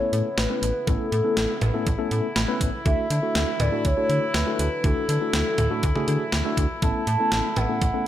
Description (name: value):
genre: synth-pop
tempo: 121 BPM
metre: 4/4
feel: straight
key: A major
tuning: A4 = 440 Hz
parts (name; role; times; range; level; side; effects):
- hollow clarinet-like synth lead; melody; 0.0-8.1 s; A4 to A5; -27 LUFS; equal; chorus, digital delay
- mellow tine electric piano; accompaniment; 0.0-8.1 s; A3 to B5; -29 LUFS; left 2 dB; medium stereo tremolo
- mellow brass ensemble; sustained chords; 0.0-8.1 s; C#3 to E4; -31 LUFS; equal; none
- slap-like FM bass; bass; 0.1-7.9 s; A1 to D3; -26 LUFS; equal; none
- clean 12-bit digital drum machine; drums; 0.1-7.9 s; cowbell, hi-hat, kick drum, snare drum, toms; -26 LUFS; equal; none
room: light reverb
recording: none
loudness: -21 LUFS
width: side -12 dB against mid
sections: 0.0-8.1 A section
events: tine electric piano fill 2.1-2.9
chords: 0.0 Aadd9; 2.9 Dadd9; 6.8 Aadd9